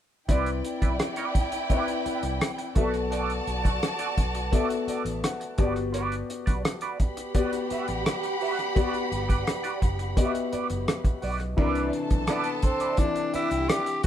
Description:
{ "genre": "lush 1970s-style soul", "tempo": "85 BPM", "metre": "4/4", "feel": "straight", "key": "unclear", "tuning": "A4 = 441 Hz", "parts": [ { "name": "warm studio violin section", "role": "second line", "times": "0.3-14.1 s", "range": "E4 to B5", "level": "-32 LUFS", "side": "right 1 dB", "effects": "none" }, { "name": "warm concert grand piano", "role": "accompaniment", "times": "0.3-14.1 s", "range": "C3 to A5", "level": "-30 LUFS", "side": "left 4 dB", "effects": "none" }, { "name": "clean electric guitar", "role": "riff", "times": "0.3-14.1 s", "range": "E4 to E5", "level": "-33 LUFS", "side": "right 5 dB", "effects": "wah" }, { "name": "vintage muted fingered electric bass", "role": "bass", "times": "0.3-14.1 s", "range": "F#1 to C2", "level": "-33 LUFS", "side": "equal", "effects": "none" }, { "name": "cloth-damped thuddy drum kit", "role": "drums", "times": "0.3-14.1 s", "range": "crash cymbal, hi-hat, kick drum, rim click", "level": "-26 LUFS", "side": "equal", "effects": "none" }, { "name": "growling tenor saxophone", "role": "melody", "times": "12.3-14.1 s", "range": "B3 to G4", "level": "-27 LUFS", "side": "equal", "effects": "none" } ], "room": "moderate studio reverb, RT60 0.6 s", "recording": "band playing live in one room", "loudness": "-24 LUFS", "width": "side -10 dB against mid", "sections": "0.3-11.6 A section; 11.6-14.1 B section", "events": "grand piano fill 4.9-5.9", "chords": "0.3 Cmaj9; 2.8 Bm7; 5.6 Gmaj7; 11.6 Cmaj9", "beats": "| 0.29 0.99 1.70 2.41 | 3.11 3.82 4.53 5.23 | 5.94 6.64 7.35 8.05 | 8.76 9.46 10.17 10.87 | 11.58 12.28 12.99 13.69" }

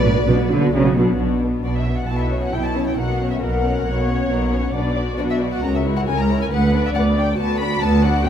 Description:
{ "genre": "quick classical-period movement for string orchestra", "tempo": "136 BPM", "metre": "4/4", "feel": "straight", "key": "B minor", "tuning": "A4 = 437 Hz", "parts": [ { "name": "muted studio violin section", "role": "melody", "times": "0.0-8.3 s", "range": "D5 to B5", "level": "-26 LUFS", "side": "left 4 dB", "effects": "none" }, { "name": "muted studio violin section", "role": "second line", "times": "0.0-8.3 s", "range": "A#3 to D5", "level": "-26 LUFS", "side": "left 5 dB", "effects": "none" }, { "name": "muted studio viola section", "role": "accompaniment", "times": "0.0-8.3 s", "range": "F#3 to D5", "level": "-24 LUFS", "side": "right 1 dB", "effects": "none" }, { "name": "muted studio cello section", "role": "bass", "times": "0.0-8.3 s", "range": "C#2 to D3", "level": "-21 LUFS", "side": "right 1 dB", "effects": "none" }, { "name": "muted studio double bass section", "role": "bass", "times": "0.0-8.3 s", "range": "B1 to D2", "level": "-23 LUFS", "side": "right 2 dB", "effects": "none" } ], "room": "moderate recital hall reverb, RT60 1.4 s", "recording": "none", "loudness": "-17 LUFS", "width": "side -9 dB against mid", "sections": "0.0-1.2 A section; 1.2-8.3 A section", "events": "none", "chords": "0.0 Bm; 2.1 A/B; 3.0 F#/B; 4.7 Bm; 5.6 A#dim/C#; 6.5 Bm/D", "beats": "0.28 0.73 | 1.19 1.64 2.08 2.53 | 2.97 3.42 3.86 4.30 | 4.75 5.19 5.63 6.07 | 6.51 6.95 7.39 7.83 | 8.27" }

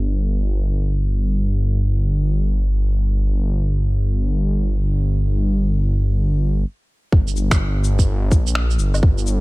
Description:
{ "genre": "future garage", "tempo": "free time", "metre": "none", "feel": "none", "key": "G minor", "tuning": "A4 = 440 Hz", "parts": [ { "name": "swelling detuned saw bass", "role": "bass", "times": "0.0-9.4 s", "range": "G1 to Bb1", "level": "-18 LUFS", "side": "equal", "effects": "sidechain pumping" }, { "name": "electronic kick drum", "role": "drums", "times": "7.1-9.1 s", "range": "none", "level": "-15 LUFS", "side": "equal", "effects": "none" }, { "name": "electronic shaker, cabasa, finger snaps and woodblock", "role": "drums", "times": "7.3-9.4 s", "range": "none", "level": "-25 LUFS", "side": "equal", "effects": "overdrive, low-pass filter on snare, low-pass filter on perc" } ], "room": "digital ambience", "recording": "dark, warm production, low-pass filter", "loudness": "-17 LUFS", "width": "side -21 dB against mid", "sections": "0.0-7.1 A section; 7.1-9.4 B section", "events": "filter sweep 0.0-7.1; stop 6.6-7.1", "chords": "none", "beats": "free time" }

